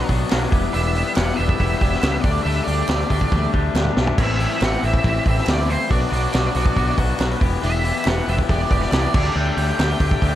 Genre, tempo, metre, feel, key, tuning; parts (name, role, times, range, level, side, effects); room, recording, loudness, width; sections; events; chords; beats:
indie rock; 139 BPM; 4/4; straight; E minor; A4 = 440 Hz
octave-fuzz lead guitar; melody; 0.0-10.4 s; C5 to G5; -26 LUFS; right 3 dB; distortion
crunchy overdriven guitar; riff; 0.0-10.4 s; E3 to G4; -25 LUFS; left 11 dB
twangy electric guitar; riff; 0.0-10.4 s; E3 to G4; -29 LUFS; right 7 dB; lush chorus
growling picked electric bass; bass; 0.1-10.4 s; E1 to D2; -22 LUFS; equal; overdrive
vintage drum kit; drums; 0.1-10.3 s; crash cymbal, hi-hat, kick drum, snare drum, toms; -21 LUFS; equal
group handclap; percussion; 0.3-9.9 s; -36 LUFS; right 7 dB
small room reverb; dark, warm production; -17 LUFS; side -12 dB against mid
0.0-10.4 A section
drum fill 3.3-4.2
0.0 Bm; 0.5 Em7; 2.2 Dsus4; 4.2 Am7; 5.9 Bm; 7.4 Em7; 9.1 Dsus4
0.31 | 0.74 1.17 1.60 2.03 | 2.46 2.89 3.32 3.75 | 4.18 4.61 5.04 5.48 | 5.91 6.34 6.77 7.20 | 7.63 8.06 8.49 8.93 | 9.36 9.79 10.22